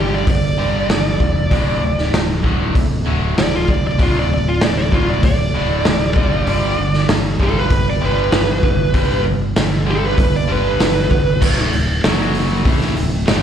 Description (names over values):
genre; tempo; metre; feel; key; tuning
classic rock; 97 BPM; 4/4; straight; D major; A4 = 440 Hz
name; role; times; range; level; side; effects
bluesy overdriven lead guitar; melody; 0.0-11.4 s; F4 to D5; -20 LUFS; right 1 dB; distortion, slapback echo
biting overdriven guitar; riff; 0.0-13.4 s; D2 to A3; -22 LUFS; right 1 dB; spring reverb, slapback echo
modern bright fingered electric bass; bass; 0.0-13.4 s; D1 to A1; -20 LUFS; equal; none
raw garage drum kit; drums; 0.3-13.4 s; crash cymbal, hi-hat, kick drum, snare drum; -17 LUFS; equal; none
room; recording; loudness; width
light reverb; live gig heard through the venue's PA, club reverb; -14 LUFS; side -9 dB against mid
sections
0.0-11.4 A section; 11.4-13.4 B section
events
lead electric guitar solo 0.0-11.4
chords
0.0 G5; 1.5 D5; 6.2 G; 11.4 D5; 12.0 F#5; 12.7 D5